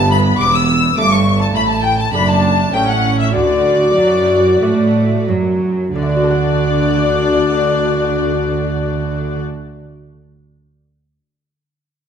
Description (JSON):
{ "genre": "classical, baroque-style concerto movement with solo episodes", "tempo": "88-105 BPM", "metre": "4/4", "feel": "straight", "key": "D major", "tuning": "A4 = 440 Hz", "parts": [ { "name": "clear violin", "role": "melody", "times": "0.0-9.4 s", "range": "D5 to E6", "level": "-20 LUFS", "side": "left 2 dB", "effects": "none" }, { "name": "rich studio violin section", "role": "melody", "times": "0.0-9.4 s", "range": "D5 to E6", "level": "-24 LUFS", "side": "left 6 dB", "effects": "none" }, { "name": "rich studio violin section", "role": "second line", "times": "0.0-9.4 s", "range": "D4 to E6", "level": "-22 LUFS", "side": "left 5 dB", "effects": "none" }, { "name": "lute", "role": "accompaniment", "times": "0.0-10.3 s", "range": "E2 to F#5", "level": "-24 LUFS", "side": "equal", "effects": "none" }, { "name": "rich chamber viola section", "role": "accompaniment", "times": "0.0-9.4 s", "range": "A3 to F#4", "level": "-19 LUFS", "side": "left 1 dB", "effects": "none" }, { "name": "rich chamber double bass section", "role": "bass", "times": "0.0-9.4 s", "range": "E1 to A2", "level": "-20 LUFS", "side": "right 4 dB", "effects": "none" }, { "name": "warm chamber cello section", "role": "bass", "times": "0.0-9.4 s", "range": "E2 to A3", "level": "-20 LUFS", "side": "right 3 dB", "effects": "none" } ], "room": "wet recital hall reverb, RT60 1.5 s", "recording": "none", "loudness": "-12 LUFS", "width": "side -8 dB against mid", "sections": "0.0-6.0 A section; 6.0-8.7 B section", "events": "slowing down 0.0-6.0", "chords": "0.0 Em/G; 1.0 A5/G; 2.1 D/F#; 2.7 A; 3.3 D" }